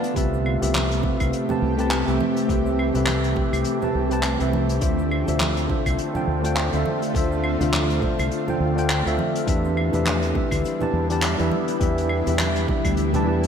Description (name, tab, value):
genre	sunset chillout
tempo	103 BPM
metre	4/4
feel	swing 57% on 16ths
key	A minor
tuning	A4 = 440 Hz
part	tine electric piano	accompaniment	0.0-13.4 s	C3 to A5	-24 LUFS	equal	auto-pan, ping-pong delay
part	shimmering ambient pad	sustained chords	0.0-13.5 s	D3 to G4	-26 LUFS	equal	chorus, built-in reverb, phaser
part	vintage brush drum kit	drums	0.0-13.5 s	claves, handclaps, hi-hat, shaker	-28 LUFS	equal	gated reverb
part	fingered electric bass	bass	0.2-13.5 s	C2 to E2	-25 LUFS	equal	none
part	electronic kick drum	drums	0.2-12.9 s	none	-26 LUFS	equal	none
part	congas	percussion	0.6-13.2 s	none	-33 LUFS	right 2 dB	none
room	moderate lush hall reverb, RT60 2.8 s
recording	bright 1980s-style digital production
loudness	-20 LUFS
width	side -7 dB against mid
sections	0.0-13.5 A section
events	none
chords	0.2 Am7/C; 4.8 Dm7; 9.5 Em7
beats	| 0.16 0.74 1.32 1.91 | 2.49 3.07 3.65 4.24 | 4.82 5.40 5.99 6.57 | 7.15 7.73 8.32 8.90 | 9.48 10.06 10.65 11.23 | 11.81 12.39 12.98